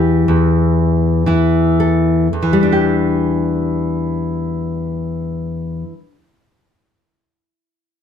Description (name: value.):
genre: folk, solo fingerstyle acoustic guitar.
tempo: 54-65 BPM.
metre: 4/4.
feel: straight.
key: E minor.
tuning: A4 = 440 Hz.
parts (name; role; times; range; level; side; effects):
nylon-string guitar; solo; 0.0-6.2 s; E2 to A4; -14 LUFS; left 1 dB; slapback echo.
room: light reverb.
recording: close, detailed microphones.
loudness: -14 LUFS.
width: side -8 dB against mid.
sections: 0.0-2.3 A section; 2.3-6.7 B section.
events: slowing down 0.0-2.3.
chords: 0.0 Emadd11; 2.3 Em7.